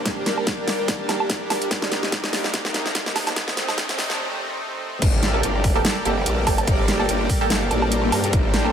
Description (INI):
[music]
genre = heavy wobble dubstep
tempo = 145 BPM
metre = 4/4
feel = swing 55% on 16ths, half-time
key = G minor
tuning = A4 = 440 Hz
[part]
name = supersaw pad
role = sustained chords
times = 0.0-8.7 s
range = C3 to D5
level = -27 LUFS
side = equal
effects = sidechain pumping
[part]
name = riser and impact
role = sound effects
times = 0.6-6.7 s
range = none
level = -32 LUFS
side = equal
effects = none
[part]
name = granular cloud pad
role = texture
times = 0.0-8.7 s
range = Bb3 to Eb6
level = -29 LUFS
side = equal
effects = built-in reverb, sidechain pumping
[part]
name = dubstep drum kit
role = drums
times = 0.1-8.6 s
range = crash cymbal, hi-hat, snare drum, woodblock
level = -24 LUFS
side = right 1 dB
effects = small room ambience
[part]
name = electronic kick drum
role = drums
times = 0.1-8.4 s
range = none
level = -23 LUFS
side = equal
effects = small room ambience
[part]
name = growl bass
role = bass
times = 5.0-8.7 s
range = G1 to G2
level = -23 LUFS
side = equal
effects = chorus, overdrive
[part]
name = orchestra-hit-like synth stab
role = stabs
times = 5.3-8.7 s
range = Bb3 to A4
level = -26 LUFS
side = right 3 dB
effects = built-in reverb, dub echo
[sound]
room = light reverb, digital ambience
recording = high-pass filter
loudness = -19 LUFS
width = side -8 dB against mid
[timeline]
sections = 0.0-5.0 A section; 5.0-8.7 B section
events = build-up 0.0-5.0; drum fill 0.0-4.2; filter sweep 0.0-5.0; break 4.2-5.0; drop 5.0-8.7; impact 5.0-6.7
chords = 0.0 Gm; 1.7 Cm7; 3.4 Adim; 5.0 Gmadd9